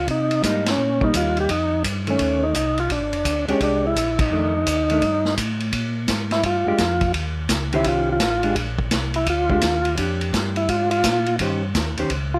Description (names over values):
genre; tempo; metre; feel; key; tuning
soul jazz organ trio; 170 BPM; 4/4; swing 65% on 8ths; Bb mixolydian; A4 = 439 Hz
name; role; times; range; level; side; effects
percussive tonewheel organ; melody; 0.0-12.4 s; Db4 to G4; -24 LUFS; equal; slow rotary speaker
mellow tonewheel organ; bass; 0.0-12.4 s; F1 to C3; -28 LUFS; equal; chorus vibrato, slow rotary speaker
vintage drum kit; drums; 0.1-12.2 s; hi-hat, kick drum, ride cymbal, snare drum; -27 LUFS; equal; none
hollow-body jazz guitar; accompaniment; 0.4-12.1 s; Eb3 to C5; -28 LUFS; equal; none
room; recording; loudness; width
moderate club reverb, RT60 0.8 s; none; -21 LUFS; mono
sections
0.0-5.7 A section; 5.7-12.4 B section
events
band accent 0.6, 4.1; tonewheel organ solo 5.7-12.4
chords
0.1 Cm7; 1.5 F9; 2.9 Bb13; 4.3 F13; 5.7 Bb5; 7.1 Eb13; 8.6 Bb13; 11.4 Eb6